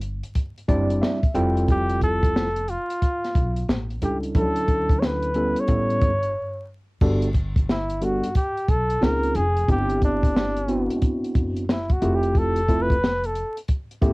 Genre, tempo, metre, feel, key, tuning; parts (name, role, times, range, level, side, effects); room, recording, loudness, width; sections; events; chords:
hip hop, jazz-hop; 90 BPM; 4/4; swing 64% on 16ths; A4 = 440 Hz
upright bass; bass; 0.0-14.1 s; F1 to D2; -27 LUFS; equal
compact cocktail drum kit; drums; 0.0-14.1 s; crash cymbal, hi-hat, kick drum, snare drum; -22 LUFS; equal; cassette tape
tine electric piano; accompaniment; 0.7-14.1 s; F3 to G5; -24 LUFS; equal; medium stereo tremolo, cassette tape
breathy flugelhorn; melody; 1.7-13.6 s; D4 to C#5; -25 LUFS; equal; cassette tape
light reverb; home recording on cassette, vinyl crackle; -20 LUFS; side -25 dB against mid
0.0-7.0 A section; 7.0-14.1 B section
tine electric piano fill 0.4-1.7; break 6.4-7.0; flugelhorn solo 7.0-14.1
0.0 Cadd9/G; 1.4 Fmaj9; 3.7 A7; 4.4 Dmaj9; 5.7 A7; 7.0 Gmaj9; 9.0 C#maj9; 9.7 Cmaj9/G; 12.0 Fmaj9